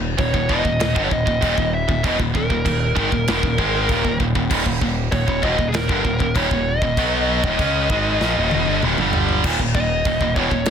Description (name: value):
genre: heavy metal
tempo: 97 BPM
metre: 4/4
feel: straight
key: Eb phrygian dominant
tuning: A4 = 440 Hz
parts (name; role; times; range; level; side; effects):
- high-gain distorted guitar; riff; 0.0-10.7 s; Eb2 to Db4; -24 LUFS; left 11 dB; distortion
- tight distorted guitar; riff; 0.0-10.7 s; Eb2 to Db4; -23 LUFS; right 11 dB; distortion
- growling picked electric bass; bass; 0.0-10.7 s; Eb1 to Db2; -25 LUFS; equal; overdrive
- high-gain lead guitar; melody; 0.2-10.7 s; Ab4 to Fb5; -23 LUFS; left 1 dB; distortion, digital delay
- modern studio drum kit; drums; 0.2-10.7 s; china cymbal, crash cymbal, kick drum, snare drum, toms; -24 LUFS; equal; none
room: small room ambience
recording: dense, heavily limited modern master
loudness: -17 LUFS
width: side -8 dB against mid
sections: 0.0-9.4 A section; 9.4-10.7 B section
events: drum fill 8.2-9.4; lead electric guitar solo 9.4-10.7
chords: 0.0 Eb; 9.4 Eb5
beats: 0.19 0.80 1.42 | 2.04 2.65 3.27 3.89 | 4.50 5.12 5.74 6.36 | 6.97 7.59 8.21 8.82 | 9.44 10.05 10.67